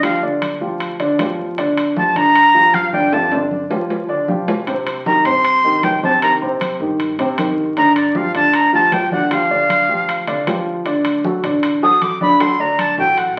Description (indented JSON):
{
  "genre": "Afro-Cuban jazz",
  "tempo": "155 BPM",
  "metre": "4/4",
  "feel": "straight",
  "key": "G minor",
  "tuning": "A4 = 439 Hz",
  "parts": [
    { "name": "breathy bright jazz flute", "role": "melody", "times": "0.0-13.4 s", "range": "D5 to Eb6", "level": "-16 LUFS", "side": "equal", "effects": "none" },
    { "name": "warm baby grand piano", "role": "accompaniment", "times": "0.0-13.4 s", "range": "C3 to D5", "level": "-21 LUFS", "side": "equal", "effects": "none" },
    { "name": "upright bass", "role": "bass", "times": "0.0-13.4 s", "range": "G1 to G2", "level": "-41 LUFS", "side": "equal", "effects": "none" },
    { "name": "congas", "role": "percussion", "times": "0.0-13.4 s", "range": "none", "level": "-30 LUFS", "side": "equal", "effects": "none" },
    { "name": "timbales", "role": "percussion", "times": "0.0-13.4 s", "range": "none", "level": "-28 LUFS", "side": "equal", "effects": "none" }
  ],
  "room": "wet large studio reverb, RT60 0.9 s",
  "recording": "very old 78 rpm record, vinyl crackle",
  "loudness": "-16 LUFS",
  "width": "mono",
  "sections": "0.0-13.4 A section",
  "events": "flute solo 0.0-13.4; drum fill 3.1-4.7",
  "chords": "0.0 G7(no3); 4.7 Cm; 7.8 G5; 10.9 D"
}